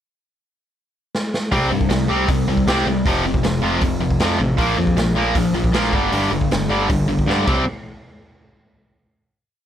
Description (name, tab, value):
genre	punk rock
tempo	156 BPM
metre	4/4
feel	straight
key	unclear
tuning	A4 = 438 Hz
part	raw garage drum kit	drums	1.1-7.6 s	crash cymbal, hi-hat, kick drum, snare drum	-22 LUFS	equal	none
part	sludgy distorted guitar	riff	1.5-7.6 s	F2 to C4	-18 LUFS	equal	overdrive
part	modern bright picked electric bass	bass	1.5-7.7 s	F1 to G2	-24 LUFS	equal	none
room	little or no reverb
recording	none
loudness	-16 LUFS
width	side -10 dB against mid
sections	0.0-1.5 pickup bar; 1.5-7.7 verse; 7.7-9.2 final hit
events	drum fill 1.1-1.5, 7.3-7.7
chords	0.0 N.C.; 1.5 C5; 3.1 F5; 4.6 Bb5; 5.9 G5; 7.5 C5; 7.7 N.C.